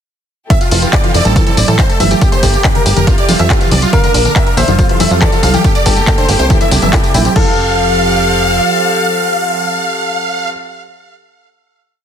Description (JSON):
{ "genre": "uplifting trance", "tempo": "140 BPM", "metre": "4/4", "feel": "straight", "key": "F major", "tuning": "A4 = 445 Hz", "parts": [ { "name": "big supersaw lead", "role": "melody", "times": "0.5-10.5 s", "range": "F4 to G5", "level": "-16 LUFS", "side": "right 1 dB", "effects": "phaser, sidechain pumping, digital delay" }, { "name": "bright baby grand piano", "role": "second line", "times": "0.5-10.5 s", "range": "F4 to G5", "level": "-21 LUFS", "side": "equal", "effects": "sidechain pumping, digital delay" }, { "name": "rich chamber string section", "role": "sustained chords", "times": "0.5-10.5 s", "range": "C3 to A4", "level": "-19 LUFS", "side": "right 1 dB", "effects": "sidechain pumping" }, { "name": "tight sequenced synth", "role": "arpeggios", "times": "0.5-7.6 s", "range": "D3 to E4", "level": "-20 LUFS", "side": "left 3 dB", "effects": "chorus, sidechain pumping, digital delay" }, { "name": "electronic kick drum", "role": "drums", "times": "0.5-7.4 s", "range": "none", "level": "-13 LUFS", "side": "equal", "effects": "none" }, { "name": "techno drum kit", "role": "drums", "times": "0.5-7.4 s", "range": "congas, crash cymbal, handclaps, hi-hat, tambourine", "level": "-16 LUFS", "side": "right 1 dB", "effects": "sidechain pumping on hats, sidechain pumping on perc, sidechain pumping on cymbals" }, { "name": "plucky analog bass", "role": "bass", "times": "0.7-8.6 s", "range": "F1 to A2", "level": "-15 LUFS", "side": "equal", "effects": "sidechain pumping" }, { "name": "bright grand piano", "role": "second line", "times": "3.9-10.5 s", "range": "A4 to C5", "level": "-20 LUFS", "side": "left 2 dB", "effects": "digital delay" } ], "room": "light reverb", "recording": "dense, heavily limited modern master", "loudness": "-9 LUFS", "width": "side -8 dB against mid", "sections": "0.5-7.4 drop; 7.4-10.8 final chord", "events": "drop 0.5-7.4", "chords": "0.5 Fmaj7; 1.4 Am; 2.2 Gmadd9; 3.1 Fmaj7; 3.9 Bb; 4.8 Fmaj7; 5.6 Gmadd9; 6.5 C7; 7.4 F", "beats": "| 0.50 0.93 1.36 1.79 | 2.21 2.64 3.07 3.50 | 3.93 4.36 4.79 5.21 | 5.64 6.07 6.50 6.93 | 7.36 7.79 8.21 8.64 | 9.07 9.50 9.93 10.36" }